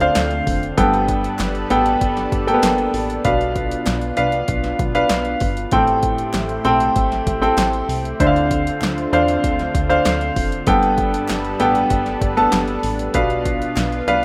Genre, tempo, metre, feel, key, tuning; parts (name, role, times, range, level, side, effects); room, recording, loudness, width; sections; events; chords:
piano-driven pop; 97 BPM; 4/4; straight; A4 = 439 Hz
clear concert grand piano; accompaniment; 0.0-14.2 s; G2 to A5; -20 LUFS; equal
lush unison pad; sustained chords; 0.0-14.2 s; D3 to C5; -28 LUFS; equal; chorus
plucky analog bass; bass; 0.0-14.2 s; F1 to E2; -28 LUFS; equal
deep house drum kit; drums; 0.0-14.2 s; hi-hat, kick drum, snare drum; -26 LUFS; equal; overdrive
group handclap; percussion; 0.2-13.9 s; -39 LUFS; equal
light reverb; rough home demo mix; -18 LUFS; mono
0.0-14.2 A section
0.0 Dm7; 0.8 Gadd9; 3.2 Bdim; 5.7 Am7; 8.2 Dm7; 10.7 Gadd9; 13.1 Bdim